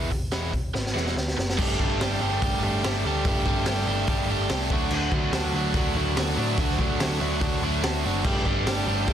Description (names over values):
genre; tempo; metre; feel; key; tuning
indie rock; 144 BPM; 4/4; straight; unclear; A4 = 440 Hz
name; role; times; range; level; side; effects
overdriven electric guitar; riff; 0.0-9.1 s; D3 to G4; -26 LUFS; right 1 dB; none
hollow-body short-scale picked electric bass; bass; 0.0-9.1 s; E1 to A2; -29 LUFS; equal; none
raw garage drum kit; drums; 0.1-9.1 s; crash cymbal, hi-hat, kick drum, snare drum; -27 LUFS; equal; none
room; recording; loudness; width
little or no reverb; dense, heavily limited modern master; -22 LUFS; side -9 dB against mid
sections
0.0-1.6 A section; 1.6-9.1 B section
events
drum fill 0.7-1.6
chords
0.0 E; 1.6 Gsus2; 4.7 D; 8.2 Gsus2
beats
0.33 0.75 1.16 | 1.58 2.00 2.42 2.83 | 3.25 3.67 4.08 4.50 | 4.92 5.33 5.75 6.17 | 6.58 7.00 7.41 7.83 | 8.25 8.66 9.08